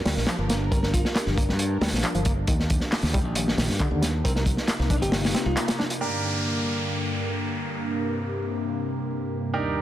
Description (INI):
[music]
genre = breakbeat, breaks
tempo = 136 BPM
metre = 4/4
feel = straight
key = G minor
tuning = A4 = 440 Hz
[part]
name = phased analog pad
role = sustained chords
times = 0.0-9.8 s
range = Eb2 to Bb4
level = -30 LUFS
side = left 1 dB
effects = phaser, chorus, sidechain pumping
[part]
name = modern bright fingered electric bass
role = bass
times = 0.0-5.5 s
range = G1 to G2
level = -27 LUFS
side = equal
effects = none
[part]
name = reed electric piano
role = riff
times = 0.1-5.8 s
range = D3 to D4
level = -32 LUFS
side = equal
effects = fast tremolo, digital delay
[part]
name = crunchy breakbeat drum kit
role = drums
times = 0.1-6.0 s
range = hi-hat, kick drum, snare drum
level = -25 LUFS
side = equal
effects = none
[part]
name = electronic handclaps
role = drums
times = 0.3-5.7 s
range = none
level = -34 LUFS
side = equal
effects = none
[part]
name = bell-like FM electric piano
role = melody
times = 0.7-1.1, 4.2-5.9 s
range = F4 to Bb4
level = -34 LUFS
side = equal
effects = chorus, telephone sound, digital delay
[part]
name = bright grand piano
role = stabs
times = 6.0-9.8 s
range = Bb3 to Bb4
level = -32 LUFS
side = right 4 dB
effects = low-pass filter, digital delay
[part]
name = downlifter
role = sound effects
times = 6.0-9.5 s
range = none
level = -32 LUFS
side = equal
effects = none
[sound]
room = light reverb, studio ambience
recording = dense, heavily limited modern master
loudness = -23 LUFS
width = side -12 dB against mid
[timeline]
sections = 0.0-6.0 A section; 6.0-9.8 B section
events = band accent 5.6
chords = 0.0 Gm; 2.5 Ebmaj7; 4.2 Cm7; 6.0 Gm